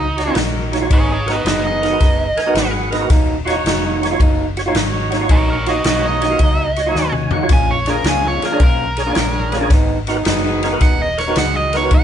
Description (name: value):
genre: electric blues shuffle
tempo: 109 BPM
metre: 4/4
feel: swing 67% on 8ths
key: Eb minor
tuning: A4 = 441 Hz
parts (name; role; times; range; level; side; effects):
- biting lead guitar; melody; 0.0-12.0 s; Eb4 to Ab5; -20 LUFS; right 2 dB; overdrive
- electric guitar through a small old amp; riff; 0.0-12.0 s; Eb3 to F4; -21 LUFS; right 1 dB; none
- vintage muted fingered electric bass; bass; 0.0-12.0 s; Eb1 to Eb2; -23 LUFS; equal; none
- percussive tonewheel organ; accompaniment; 0.2-11.9 s; D4 to Ab5; -22 LUFS; right 3 dB; slow rotary speaker, overdrive, chorus vibrato
- swinging big-band drum kit; drums; 0.2-12.0 s; kick drum, ride cymbal, snare drum, toms; -17 LUFS; equal; none
- warm horn section; stabs; 0.3-11.9 s; D4 to Db5; -26 LUFS; left 1 dB; none
room: light reverb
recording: band playing live in one room, nothing above 10.4 kHz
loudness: -14 LUFS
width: side -9 dB against mid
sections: 0.0-12.0 A section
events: lead electric guitar solo 0.0-12.0; tonewheel organ fill 2.0-3.1, 6.7-7.5; drum fill 7.0-7.5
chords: 0.0 Ebm7; 0.9 Abm7; 3.1 Ebm7; 7.5 Bb7#9; 9.7 Abm7